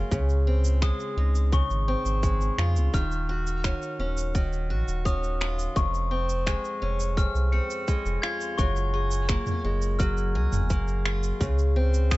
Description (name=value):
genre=folktronica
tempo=85 BPM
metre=4/4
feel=straight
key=Db major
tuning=A4 = 436 Hz
part: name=picked acoustic archtop guitar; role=arpeggios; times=0.0-12.2 s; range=F2 to Ab4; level=-31 LUFS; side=left 1 dB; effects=tape echo
part: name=warm sub bass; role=bass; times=0.0-12.2 s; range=Eb1 to F2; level=-25 LUFS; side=equal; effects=none
part: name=electronic kick drum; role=drums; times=0.1-12.2 s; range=none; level=-26 LUFS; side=equal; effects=overdrive
part: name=organic electronic drum kit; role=drums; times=0.1-12.2 s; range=cabasa, finger snaps, toms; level=-33 LUFS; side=right 1 dB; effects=overdrive
part: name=glockenspiel with soft plastic mallets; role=second line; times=0.8-12.2 s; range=Db6 to Db7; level=-33 LUFS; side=left 2 dB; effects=tape echo
room=little or no reverb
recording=dark, warm production, nothing above 7.9 kHz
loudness=-23 LUFS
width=side -19 dB against mid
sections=0.0-12.2 A section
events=none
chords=0.1 Dbmaj9; 2.9 Ebm9; 5.8 Dbmaj7/F; 8.6 Gbmaj9; 11.4 Dbmaj7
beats=| 0.12 0.82 1.53 2.23 | 2.94 3.65 4.35 5.06 | 5.76 6.47 7.17 7.88 | 8.59 9.29 10.00 10.70 | 11.41 12.12